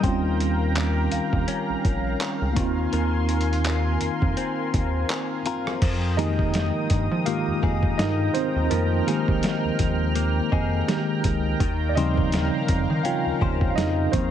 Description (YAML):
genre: contemporary R&B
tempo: 83 BPM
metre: 4/4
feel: swing 58% on 16ths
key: F minor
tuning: A4 = 441 Hz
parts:
  - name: tine electric piano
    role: accompaniment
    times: 0.0-14.3 s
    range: Db3 to F5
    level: -26 LUFS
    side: right 1 dB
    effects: medium stereo tremolo
  - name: lush unison pad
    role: sustained chords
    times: 0.0-14.3 s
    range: Bb4 to F6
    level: -31 LUFS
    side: equal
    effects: chorus
  - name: direct-recorded clean electric guitar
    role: arpeggios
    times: 0.0-14.3 s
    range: Eb3 to C5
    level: -31 LUFS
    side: left 7 dB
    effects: phaser, tape echo
  - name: rubbery square bass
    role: bass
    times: 0.0-14.3 s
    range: Bb1 to F3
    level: -25 LUFS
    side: equal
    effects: none
  - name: dusty soul sampler-style drum kit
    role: drums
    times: 0.0-14.3 s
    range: crash cymbal, handclaps, hi-hat, kick drum, rim click, snare drum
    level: -26 LUFS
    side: equal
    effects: overdrive
  - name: celesta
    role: texture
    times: 0.0-14.3 s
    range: Eb5 to Bb5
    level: -39 LUFS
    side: left 1 dB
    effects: none
room: little or no reverb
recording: heavily compressed radio sound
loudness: -21 LUFS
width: side -10 dB against mid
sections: 0.0-5.8 A section; 5.8-14.3 B section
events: tine electric piano solo 5.8-14.3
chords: 0.0 Eb13; 2.6 Ab69/Eb; 5.8 Fm11; 11.6 Eb13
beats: | 0.04 0.76 1.48 2.20 | 2.93 3.65 4.37 5.10 | 5.82 6.54 7.26 7.99 | 8.71 9.43 10.16 10.88 | 11.60 12.32 13.05 13.77